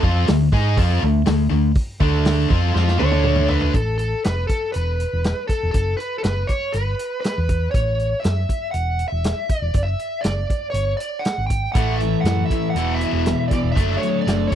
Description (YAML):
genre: classic rock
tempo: 120 BPM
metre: 4/4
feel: straight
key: unclear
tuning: A4 = 440 Hz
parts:
  - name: biting overdriven guitar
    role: riff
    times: 0.0-3.7, 11.7-14.6 s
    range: E2 to G#4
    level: -24 LUFS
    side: right 16 dB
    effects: none
  - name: tight distorted guitar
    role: riff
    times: 0.0-3.7, 11.8-14.6 s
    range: E2 to G#4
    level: -22 LUFS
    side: left 11 dB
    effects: distortion
  - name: hollow-body short-scale fingered electric bass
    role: bass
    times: 0.0-14.5 s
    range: E1 to G#2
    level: -21 LUFS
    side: equal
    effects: none
  - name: vintage drum kit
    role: drums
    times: 0.0-14.6 s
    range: hi-hat, kick drum, snare drum, toms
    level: -22 LUFS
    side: equal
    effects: none
  - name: biting lead guitar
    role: melody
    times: 3.0-14.6 s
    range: A4 to G5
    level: -24 LUFS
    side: equal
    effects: overdrive
room: little or no reverb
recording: dry, close 1970s-style studio recording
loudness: -18 LUFS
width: side -10 dB against mid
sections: 0.0-3.8 A section; 3.8-14.6 B section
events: drum fill 2.8-3.8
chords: 0.0 D5; 3.8 F; 4.7 E5; 5.7 F#madd11; 6.7 G; 7.7 A; 8.8 Dadd9/E; 9.8 D/F#; 10.8 Dmaj7#11; 11.8 A5; 12.8 E5; 13.8 D/F#